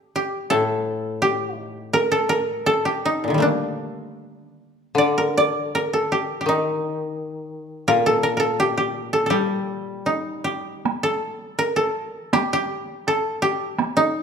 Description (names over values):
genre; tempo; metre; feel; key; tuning
japanese traditional, Japanese chamber music; 74-86 BPM; 2/4; rubato; G hirajoshi; A4 = 440 Hz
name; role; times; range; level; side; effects
koto; melody; 0.0-14.2 s; Bb2 to D5; -21 LUFS; equal; none
koto; accompaniment; 0.5-2.7, 4.9-11.6 s; A2 to G3; -25 LUFS; left 4 dB; none
taiko ensemble; percussion; 10.9-13.9 s; none; -26 LUFS; right 5 dB; none
room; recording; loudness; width
wet recital hall reverb, RT60 1.7 s; none; -20 LUFS; side -6 dB against mid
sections
0.0-10.8 A section; 10.8-14.2 B section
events
none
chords
none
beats
| 0.53 1.25 | 1.97 2.70 | 3.45 4.20 | 4.97 5.75 | 6.48 7.19 | 7.89 8.60 | 9.33 10.08 | 10.84 11.59 | 12.33 13.07 | 13.78